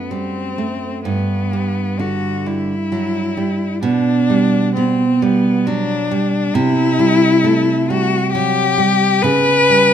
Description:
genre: romantic duo for cello and classical guitar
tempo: 66 BPM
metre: 3/4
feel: uneven beats, rubato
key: G major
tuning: A4 = 438 Hz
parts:
  - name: rich cello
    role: melody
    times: 0.0-9.9 s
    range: B3 to B4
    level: -17 LUFS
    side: left 4 dB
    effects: none
  - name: nylon-string guitar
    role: accompaniment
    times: 0.0-9.9 s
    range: F#2 to B3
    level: -17 LUFS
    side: right 3 dB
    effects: none
room: moderate recital hall reverb, RT60 1.4 s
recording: minimal, uncompressed stereo recording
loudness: -14 LUFS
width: side -9 dB against mid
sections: 0.0-9.9 A section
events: none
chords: 0.0 D7/F# (rootless); 1.1 G; 3.8 G/B; 6.5 Am7/C; 9.2 A7/C# (rootless)

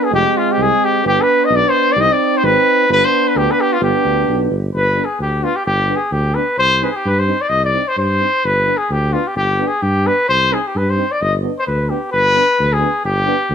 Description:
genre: balkan folk, Balkan brass band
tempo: 130 BPM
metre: 2/4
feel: swing 56% on 16ths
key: G phrygian dominant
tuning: A4 = 439 Hz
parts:
  - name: mellow trumpet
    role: melody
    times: 0.0-13.5 s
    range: F4 to Eb5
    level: -15 LUFS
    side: left 2 dB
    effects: none
  - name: clear euphonium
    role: accompaniment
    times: 0.0-13.4 s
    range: C4 to Eb4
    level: -24 LUFS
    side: left 17 dB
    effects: none
  - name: warm euphonium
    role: accompaniment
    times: 0.0-13.4 s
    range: Ab3 to C4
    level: -21 LUFS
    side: right 14 dB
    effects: none
  - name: dark tuba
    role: bass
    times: 0.1-13.5 s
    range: F1 to G2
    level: -19 LUFS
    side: equal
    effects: none
room: light reverb, small room ambience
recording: 1960s-style stereo with parts hard left and right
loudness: -13 LUFS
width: side -7 dB against mid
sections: 0.0-4.7 A section; 4.7-12.1 B section; 12.1-13.5 B section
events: none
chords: 0.1 Fm; 1.0 G; 2.0 Cm; 2.9 G; 6.6 Cm; 8.4 G; 10.3 Cm; 11.2 G

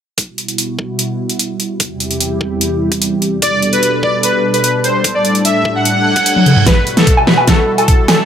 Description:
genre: heavy wobble dubstep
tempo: 148 BPM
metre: 4/4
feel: half-time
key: E minor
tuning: A4 = 441 Hz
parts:
  - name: lush unison pad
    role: sustained chords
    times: 0.4-8.3 s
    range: E2 to A4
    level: -18 LUFS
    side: equal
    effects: chorus, phaser, sidechain pumping
  - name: dubstep drum kit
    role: drums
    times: 0.2-8.2 s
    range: hi-hat, snare drum, toms, woodblock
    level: -14 LUFS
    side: equal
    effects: overdrive
  - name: electronic kick drum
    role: drums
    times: 0.2-8.0 s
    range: none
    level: -15 LUFS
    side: equal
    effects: high-pass filter on kick
  - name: soft supersaw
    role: melody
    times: 3.4-8.2 s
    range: A4 to F#5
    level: -14 LUFS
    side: equal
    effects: cassette tape, tape echo
  - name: reverse cymbal and riser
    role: sound effects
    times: 6.0-8.3 s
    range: none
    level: -23 LUFS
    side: right 6 dB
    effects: none
room: light reverb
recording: none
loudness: -11 LUFS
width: side -8 dB against mid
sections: 0.2-6.7 A section; 6.7-8.3 B section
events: filter sweep on analog synth pad 0.2-6.7; reverse cymbal 6.0-6.7; drum fill 6.4-6.7, 6.7-8.3; build-up 6.7-8.3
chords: 0.2 Emadd9; 1.8 C/E; 3.4 Gadd9; 5.0 Dsus4; 6.7 Emadd9

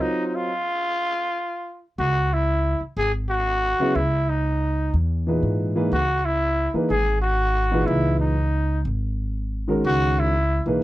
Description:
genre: modal jazz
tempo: 122 BPM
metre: 4/4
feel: swing 68% on 8ths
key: C# dorian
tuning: A4 = 439 Hz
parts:
  - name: growling trumpet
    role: melody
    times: 0.0-10.7 s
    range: D#4 to G#4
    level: -23 LUFS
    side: equal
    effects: none
  - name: warm grand piano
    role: accompaniment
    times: 0.0-0.5, 3.8-10.8 s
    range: A#2 to Eb5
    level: -23 LUFS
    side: equal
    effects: none
  - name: upright bass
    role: bass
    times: 2.0-10.8 s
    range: G#1 to G#2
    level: -23 LUFS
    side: equal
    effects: none
room: little or no reverb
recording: dry, close 1970s-style studio recording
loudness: -20 LUFS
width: side -16 dB against mid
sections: 0.0-2.0 A section; 2.0-10.8 B section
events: stop 0.0-2.0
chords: 0.0 N.C.; 2.0 C#m69

